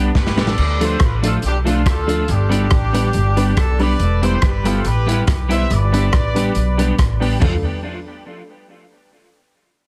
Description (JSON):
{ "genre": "ska", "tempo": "140 BPM", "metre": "4/4", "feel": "swing 53% on 8ths", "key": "D dorian", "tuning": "A4 = 442 Hz", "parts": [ { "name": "warm horn section", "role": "melody", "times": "0.0-7.0 s", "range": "B3 to E5", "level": "-26 LUFS", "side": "equal", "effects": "tape echo" }, { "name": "clean electric guitar", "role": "accompaniment", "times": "0.0-7.5 s", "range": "F3 to G4", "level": "-26 LUFS", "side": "equal", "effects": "ensemble chorus, tape echo" }, { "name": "dark upright piano", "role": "stabs", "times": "0.0-7.6 s", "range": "A3 to B4", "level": "-28 LUFS", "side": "equal", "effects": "tape echo" }, { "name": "upright bass", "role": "bass", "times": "0.0-7.6 s", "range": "E1 to D2", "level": "-21 LUFS", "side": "equal", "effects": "none" }, { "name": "crunchy breakbeat drum kit", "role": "drums", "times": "0.2-7.5 s", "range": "crash cymbal, hi-hat, kick drum, rim click, snare drum, toms", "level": "-22 LUFS", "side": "equal", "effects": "none" } ], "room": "light reverb", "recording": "heavily compressed radio sound, multiband compression", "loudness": "-17 LUFS", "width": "mono", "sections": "0.6-7.4 A section; 7.4-9.1 B section", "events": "drum fill 0.1-0.6", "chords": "0.0 G; 0.6 Dm; 2.3 G; 4.0 Em; 5.7 G; 7.4 Dm", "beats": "0.15 | 0.58 1.00 1.43 1.86 | 2.29 2.71 3.14 3.57 | 4.00 4.42 4.85 5.28 | 5.71 6.14 6.56 6.99 | 7.42" }